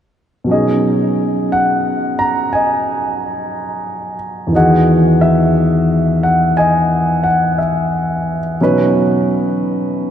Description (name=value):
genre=jazz ballad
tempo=59 BPM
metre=4/4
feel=swing 66% on 8ths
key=B major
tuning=A4 = 440 Hz
part: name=warm concert grand piano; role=solo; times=0.4-10.1 s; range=E2 to A#5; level=-13 LUFS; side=equal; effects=none
room=wet cathedral reverb, RT60 5.1 s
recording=in a vast, echoing space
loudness=-12 LUFS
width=side -9 dB against mid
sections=0.5-8.6 A section; 8.6-10.1 B section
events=none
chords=0.5 B6; 4.5 Emaj7; 8.6 Badd9